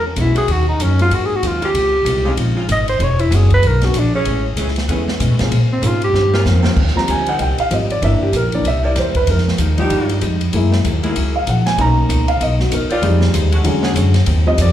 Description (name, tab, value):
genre	jazz, big band swing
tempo	191 BPM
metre	4/4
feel	swing 61% on 8ths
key	Eb major from 6.8 s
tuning	A4 = 440 Hz
part	breathy alto saxophone	melody	0.0-6.4 s	C4 to Eb5	-18 LUFS	equal	slapback echo
part	vintage hollow-body jazz guitar	accompaniment	0.0-14.7 s	Ab2 to C#5	-27 LUFS	left 4 dB	slapback echo
part	upright bass	bass	0.0-14.7 s	E1 to Cb3	-16 LUFS	equal	none
part	warm baby grand piano	accompaniment	0.2-14.7 s	D3 to Bb5	-20 LUFS	equal	slapback echo
part	swinging big-band drum kit	drums	0.2-14.7 s	crash cymbal, hi-hat, kick drum, ride cymbal, snare drum	-24 LUFS	equal	none
part	warm saxophone section	sustained chords	0.3-13.9 s	C3 to Cb5	-27 LUFS	right 1 dB	none
room	little or no reverb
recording	live gig heard through the venue's PA, club reverb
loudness	-13 LUFS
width	side -11 dB against mid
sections	0.0-6.8 A section; 6.8-14.7 A section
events	alto saxophone solo 0.0-6.8; drum fill 6.1-6.8; grand piano solo 6.8-14.7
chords	0.5 Ebm7; 1.1 Ab9; 1.7 Dbmaj7; 3.0 E13; 4.3 Amaj7; 5.5 Bbm9; 6.1 Eb13; 6.8 Eb6; 8.0 C7; 9.3 Fm9; 10.5 Gb9; 11.8 Bmaj9; 13.0 Fm7; 13.7 E13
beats	0.17 | 0.48 0.80 1.11 1.43 | 1.74 2.06 2.37 2.69 | 3.00 3.31 3.63 3.94 | 4.26 4.57 4.88 5.20 | 5.51 5.83 6.14 6.45 | 6.77 7.08 7.39 7.71 | 8.02 8.34 8.65 8.96 | 9.28 9.59 9.90 10.21 | 10.53 10.84 11.15 11.46 | 11.78 12.09 12.40 12.71 | 13.03 13.34 13.65 13.96 | 14.27 14.59